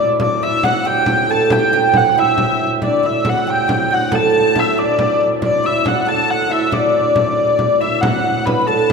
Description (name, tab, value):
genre	medieval dance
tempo	92 BPM (dotted quarters)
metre	6/8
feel	straight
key	D major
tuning	A4 = 440 Hz
part	rich hurdy-gurdy	melody	0.0-8.9 s	D5 to B5	-16 LUFS	left 2 dB	none
part	hand-pumped harmonium	drone	0.0-8.9 s	D2 to A2	-24 LUFS	equal	none
part	oud	second line	0.2-8.9 s	D4 to B4	-19 LUFS	right 6 dB	none
part	frame drum	percussion	0.2-8.9 s	none	-22 LUFS	equal	none
room	wet church reverb, RT60 3.0 s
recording	minimal, uncompressed stereo recording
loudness	-13 LUFS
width	side -5 dB against mid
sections	0.0-8.0 A section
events	none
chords	none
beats	| 0.20 0.86 | 1.51 2.16 | 2.82 3.47 | 4.12 4.78 | 5.43 6.08 | 6.73 7.39 | 8.04 8.69